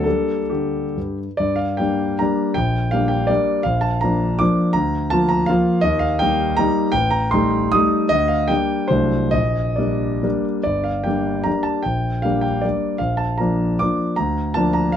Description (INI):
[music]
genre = classical, romantic triple-time dance for piano with dotted rhythms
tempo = 125-177 BPM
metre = 3/4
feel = rubato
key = G minor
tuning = A4 = 440 Hz
[part]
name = warm concert grand piano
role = solo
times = 0.0-15.0 s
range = G1 to Eb6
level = -17 LUFS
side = equal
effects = none
[sound]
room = moderate studio reverb, RT60 0.8 s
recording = dark, warm production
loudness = -17 LUFS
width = side -9 dB against mid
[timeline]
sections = 0.0-1.4 A section; 1.4-10.7 B section; 10.7-15.0 B section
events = none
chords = 0.1 Gm; 2.6 Gm/Bb; 3.7 Bb; 4.8 Bb/D; 5.8 Eb; 6.9 Am7b5; 8.1 Gm/D; 8.9 D7/C; 9.3 Gm/Bb; 10.7 Gm; 11.9 Gm/Bb; 13.0 Bb; 14.2 Bb/D